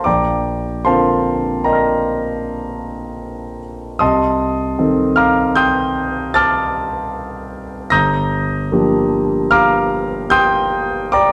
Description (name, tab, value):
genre	classical, impressionist solo piano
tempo	76 BPM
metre	5/4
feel	rubato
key	G minor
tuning	A4 = 441 Hz
part	warm concert grand piano	solo	0.0-11.3 s	G1 to Bb6	-17 LUFS	equal	none
room	moderate recital hall reverb, RT60 1.5 s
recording	dark, warm production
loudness	-16 LUFS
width	mono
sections	0.0-11.3 A section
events	none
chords	0.1 Bbadd9; 4.0 Cm6; 7.9 Gm7